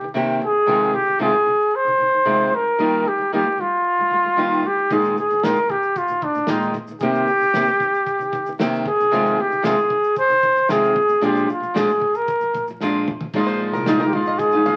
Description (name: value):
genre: acoustic pop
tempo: 114 BPM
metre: 4/4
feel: straight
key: unclear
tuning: A4 = 443 Hz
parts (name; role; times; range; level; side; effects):
- breathy trumpet; melody; 0.0-14.8 s; D4 to C5; -20 LUFS; equal; none
- nylon-string guitar; accompaniment; 0.0-14.8 s; F2 to G4; -25 LUFS; equal; none
- cloth-damped thuddy drum kit; drums; 4.9-14.8 s; crash cymbal, kick drum, shaker, snare drum, toms; -32 LUFS; equal; none
- upright bass; bass; 13.3-14.8 s; Bb1 to C2; -33 LUFS; equal; none
- bluegrass banjo; arpeggios; 13.5-14.8 s; Bb4 to F5; -30 LUFS; equal; none
room: wet studio reverb, RT60 0.8 s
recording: very old 78 rpm record, vinyl crackle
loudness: -19 LUFS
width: mono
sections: 0.0-13.3 A section; 13.3-14.8 B section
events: drum fill 12.8-13.3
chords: 0.4 Fm7; 2.5 Ebadd9; 4.9 Bb7sus4; 7.0 Cm7; 8.9 Fm7; 11.0 Bb7; 13.3 Bb7sus4